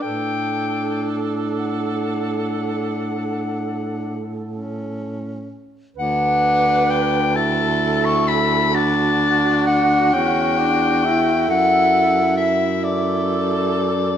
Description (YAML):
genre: classical, lyrical piece for single-reed quartet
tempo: 36-46 BPM (dotted quarters)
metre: 12/8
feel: rubato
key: D major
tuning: A4 = 440 Hz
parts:
  - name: clear soprano saxophone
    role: melody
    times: 0.0-14.2 s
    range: D5 to C#6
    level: -20 LUFS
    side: left 3 dB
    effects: none
  - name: warm alto saxophone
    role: second line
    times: 0.0-14.1 s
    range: F#4 to B4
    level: -26 LUFS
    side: right 7 dB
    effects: none
  - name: clear tenor saxophone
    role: accompaniment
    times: 0.0-13.9 s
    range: C#4 to E4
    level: -24 LUFS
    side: equal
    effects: none
  - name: warm baritone saxophone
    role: bass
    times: 0.0-14.2 s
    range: D2 to A2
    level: -24 LUFS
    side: right 2 dB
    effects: none
room: moderate recital hall reverb, RT60 1.5 s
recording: none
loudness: -17 LUFS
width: side -9 dB against mid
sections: 0.0-6.0 A section; 6.0-14.2 B section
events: none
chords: 0.0 D/A; 3.0 A; 6.0 D; 11.5 D/F#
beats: | 0.03 1.56 3.05 4.50 | 5.96 7.36 8.74 10.14 | 11.49 12.82 14.16